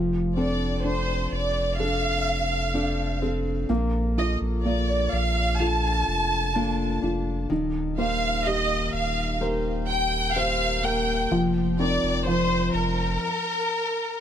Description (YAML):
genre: pop ballad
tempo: 63 BPM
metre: 4/4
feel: straight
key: unclear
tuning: A4 = 436 Hz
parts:
  - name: felt-muted upright piano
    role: accompaniment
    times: 0.0-13.2 s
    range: Eb3 to C5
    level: -28 LUFS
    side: right 1 dB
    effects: none
  - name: fingerpicked plugged-in steel-string acoustic guitar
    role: arpeggios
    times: 0.0-13.8 s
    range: Eb3 to C5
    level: -32 LUFS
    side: left 6 dB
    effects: digital delay
  - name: saturated sub bass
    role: bass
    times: 0.0-13.2 s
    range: Eb1 to Bb1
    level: -28 LUFS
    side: equal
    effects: none
  - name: warm studio violin section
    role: melody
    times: 0.4-14.2 s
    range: Bb4 to A5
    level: -26 LUFS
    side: equal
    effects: none
room: light reverb, small room ambience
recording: none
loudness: -22 LUFS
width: side -9 dB against mid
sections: 0.0-14.2 A section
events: stop 13.2-14.2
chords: 0.0 F6; 3.7 Bbmaj7; 7.5 Eb6; 11.3 F7sus4